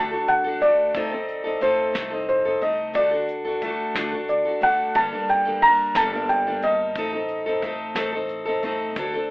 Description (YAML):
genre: acoustic folk duo or small band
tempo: 60 BPM (dotted quarters)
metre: 6/8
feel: straight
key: unclear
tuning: A4 = 444 Hz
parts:
  - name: felt-muted upright piano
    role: melody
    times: 0.0-8.3 s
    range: C5 to Bb5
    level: -20 LUFS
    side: equal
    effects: none
  - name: picked steel-string acoustic guitar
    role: accompaniment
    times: 0.0-9.3 s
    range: G2 to A4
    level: -26 LUFS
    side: left 1 dB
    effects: none
  - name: upright bass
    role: bass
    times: 0.0-9.3 s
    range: G1 to D2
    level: -41 LUFS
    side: equal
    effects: none
  - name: soft brush drum kit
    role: drums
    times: 0.3-9.1 s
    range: hi-hat, kick drum, snare drum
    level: -30 LUFS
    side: equal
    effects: none
room: moderate studio ambience, RT60 0.5 s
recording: telephone sound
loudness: -20 LUFS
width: side -24 dB against mid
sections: 0.0-9.3 A section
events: felt piano solo 0.0-9.3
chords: 0.0 D; 0.9 Adim/C; 3.0 D; 5.0 Gmadd9; 7.0 Adim